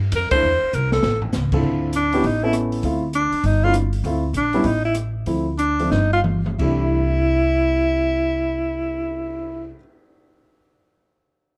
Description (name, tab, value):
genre	jazz, small-group swing and bop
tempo	169-199 BPM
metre	4/4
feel	swing 63% on 8ths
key	C major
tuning	A4 = 440 Hz
part	upright bass	bass	0.0-9.7 s	G1 to G2	-26 LUFS	equal	none
part	open jazz drum kit	drums	0.1-9.4 s	crash cymbal, cymbal swell, hi-hat, kick drum, ride cymbal, rim click, snare drum, toms	-29 LUFS	equal	none
part	breathy alto saxophone	melody	0.2-9.7 s	D4 to C5	-23 LUFS	equal	plate reverb
part	dark baby grand piano	accompaniment	0.3-9.8 s	C3 to A4	-27 LUFS	equal	none
room	moderate club reverb, RT60 0.5 s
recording	dark, warm production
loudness	-20 LUFS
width	mono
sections	0.0-1.6 A section; 1.6-6.6 B section; 6.6-9.4 C section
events	band accent 0.3; drum fill 0.7-1.3, 5.9-6.6; slowing down 4.0-6.6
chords	0.0 C6; 1.0 A; 1.6 Dm7; 2.2 A; 2.8 Dm7; 3.4 Gsus4; 4.0 Dm7; 4.6 A5; 5.3 Dm7; 5.9 Eb/G; 6.6 C6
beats	0.12 | 0.42 0.73 1.03 1.33 | 1.63 1.93 2.23 2.53 | 2.83 3.13 3.44 3.74 | 4.04 4.34 4.65 4.95 | 5.27 5.59 5.92 6.25 | 6.60 6.96 7.31 7.67 | 8.02 8.38 8.73 9.09